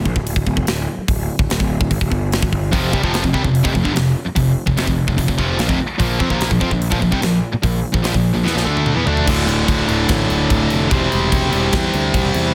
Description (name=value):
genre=heavy metal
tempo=146 BPM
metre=4/4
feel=straight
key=D minor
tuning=A4 = 440 Hz
part: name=fuzz picked electric bass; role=bass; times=0.0-12.5 s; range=D1 to F2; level=-23 LUFS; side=equal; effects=overdrive
part: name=tight metal drum kit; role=drums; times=0.1-12.4 s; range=crash cymbal, hi-hat, kick drum, snare drum, toms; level=-23 LUFS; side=equal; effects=none
part: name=distorted electric guitar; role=riff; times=2.7-12.5 s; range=D2 to D4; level=-23 LUFS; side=equal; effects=overdrive
part: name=high-gain distorted guitar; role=riff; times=2.7-12.5 s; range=D2 to D4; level=-22 LUFS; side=equal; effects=distortion
room=little or no reverb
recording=dense, heavily limited modern master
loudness=-17 LUFS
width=mono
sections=0.0-9.3 A section; 9.3-12.5 B section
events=drum fill 8.5-9.3; half time 9.3-12.5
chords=0.0 N.C.; 2.7 F5; 6.0 Bb5; 9.3 D5; 10.9 C/E